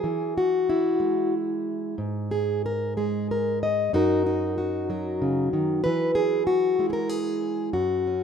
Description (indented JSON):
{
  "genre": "folk, solo fingerstyle acoustic guitar",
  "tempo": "93 BPM",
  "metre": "3/4",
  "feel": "rubato",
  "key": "unclear",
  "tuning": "A4 = 440 Hz",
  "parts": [
    { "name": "fingerpicked plugged-in steel-string acoustic guitar", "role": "solo", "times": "0.0-8.2 s", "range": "F#2 to D#5", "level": "-23 LUFS", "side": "equal", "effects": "none" }
  ],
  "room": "light reverb, small room ambience",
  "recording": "rough home demo mix",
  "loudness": "-22 LUFS",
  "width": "side -7 dB against mid",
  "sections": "0.0-8.2 A section",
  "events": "none",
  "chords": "0.0 E; 2.0 N.C.; 3.9 D#m/F#; 5.8 Eadd9",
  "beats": "| 0.03 0.67 1.32 | 1.98 2.64 3.29 | 3.94 4.57 5.21 | 5.84 6.47 7.10 | 7.75"
}